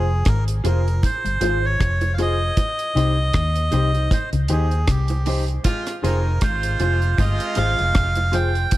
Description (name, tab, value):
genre	roots reggae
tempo	78 BPM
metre	4/4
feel	swing 56% on 16ths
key	F minor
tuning	A4 = 441 Hz
part	melodica	melody	0.0-8.8 s	G4 to G5	-24 LUFS	right 2 dB	dub echo
part	mellow electric guitar	accompaniment	0.0-8.6 s	Eb4 to C5	-30 LUFS	equal	phaser, dub echo
part	electric guitar with an envelope filter	riff	0.0-8.2 s	F2 to Eb3	-28 LUFS	left 3 dB	none
part	warm upright piano	stabs	0.0-8.5 s	Eb4 to C5	-31 LUFS	left 3 dB	none
part	vintage muted fingered electric bass	bass	0.0-8.6 s	F1 to Eb2	-21 LUFS	equal	none
part	deep reggae drum kit	drums	0.3-8.8 s	hi-hat, kick drum, rim click	-22 LUFS	equal	none
part	bongos	percussion	1.0-8.8 s	none	-34 LUFS	right 5 dB	none
part	warm horn section	second line	5.6-8.3 s	C3 to F4	-29 LUFS	right 2 dB	dub echo
room	light reverb, small room ambience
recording	none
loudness	-18 LUFS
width	side -16 dB against mid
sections	0.0-8.8 A section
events	none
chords	0.0 Fm; 2.6 Cm; 5.6 Fm